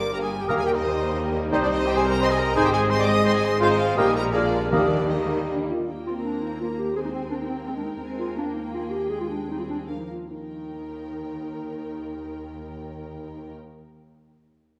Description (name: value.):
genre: quick classical-period movement for symphony orchestra.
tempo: 140-175 BPM.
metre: 3/4.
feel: rubato.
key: Eb major.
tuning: A4 = 439 Hz.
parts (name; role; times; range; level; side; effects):
clear studio violin section; melody; 0.0-13.5 s; D5 to Eb6; -35 LUFS; equal; none.
rich studio violin section; second line; 0.0-13.5 s; G3 to C5; -36 LUFS; equal; none.
warm studio viola section; accompaniment; 0.0-13.5 s; Eb3 to Eb5; -34 LUFS; equal; none.
mellow French horn section; sustained chords; 0.0-5.9 s; Ab3 to Ab4; -30 LUFS; equal; none.
warm trumpet; stabs; 0.0-5.5 s; D4 to Eb5; -30 LUFS; equal; none.
rich studio double bass section; bass; 0.0-13.5 s; G1 to Eb2; -37 LUFS; equal; none.
warm studio cello section; bass; 0.0-13.5 s; C2 to C4; -34 LUFS; equal; none.
concert flute; second line; 0.5-4.9 s; C6 to F6; -36 LUFS; equal; none.
warm clarinet; second line; 0.5-13.5 s; C4 to Ab4; -33 LUFS; equal; none.
warm oboe; second line; 0.5-4.9 s; Bb4 to C5; -36 LUFS; equal; none.
mellow bassoon; accompaniment; 0.5-4.9 s; G3 to Bb3; -33 LUFS; equal; none.
timpani; percussion; 0.5-1.0, 4.7-5.3 s; Eb3; -33 LUFS; equal; none.
room: wet concert hall reverb, RT60 2.4 s.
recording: none.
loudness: -24 LUFS.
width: mono.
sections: 0.0-5.9 A section; 5.9-10.3 B section; 10.3-12.8 C section.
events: slowing down 7.5-10.3.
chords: 0.5 Eb; 1.5 Cm; 2.6 Ab; 3.6 Fm/Ab; 4.0 Eb/Bb; 4.3 Bb7; 4.7 Eb; 7.0 Ab/Eb; 9.1 Bb5/Eb; 10.3 Eb.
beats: 0.14 | 0.49 0.84 1.19 | 1.53 1.88 2.23 | 2.57 2.92 3.27 | 3.63 3.98 4.35 | 4.73 5.12 5.50 | 5.88 6.24 6.60 | 6.96 7.31 7.66 | 8.01 8.36 8.72 | 9.09 9.48 9.88 | 10.30 10.71 11.13 | 11.54 11.95 12.36.